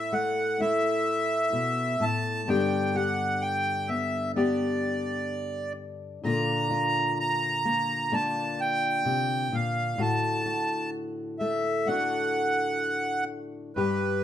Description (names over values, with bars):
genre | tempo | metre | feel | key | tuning
acoustic folk duo or small band | 64 BPM | 4/4 | straight | unclear | A4 = 439 Hz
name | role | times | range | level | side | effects
accordion | melody | 0.0-14.2 s | B4 to Bb5 | -27 LUFS | right 1 dB | none
fingerpicked steel-string acoustic guitar | accompaniment | 0.0-14.2 s | G2 to G4 | -29 LUFS | left 2 dB | none
room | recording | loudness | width
light reverb | minimal, uncompressed stereo recording | -25 LUFS | side -10 dB against mid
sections
0.0-14.2 A section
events
none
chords
0.0 A5; 2.5 G; 6.2 Bb; 10.0 D/A